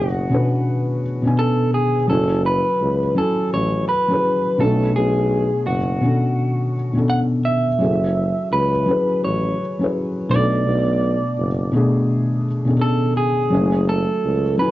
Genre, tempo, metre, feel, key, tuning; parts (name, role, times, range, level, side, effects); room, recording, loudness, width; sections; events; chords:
hip hop; 84 BPM; 4/4; swing 61% on 16ths; A4 = 440 Hz
electric guitar through a small old amp; melody; 0.0-14.7 s; F#4 to F#5; -21 LUFS; right 1 dB
felt-muted upright piano; accompaniment; 0.0-14.7 s; B2 to G#5; -19 LUFS; left 1 dB; cassette tape
warm tuba; bass; 0.0-14.6 s; F#1 to C#2; -21 LUFS; equal
light reverb; cassette tape, nothing above 7.5 kHz; -17 LUFS; side -15 dB against mid
0.0-14.7 A section
0.0 Bm9; 2.1 F#m9; 4.6 Bm9; 7.8 F#m9; 10.3 Bm9; 13.5 F#m9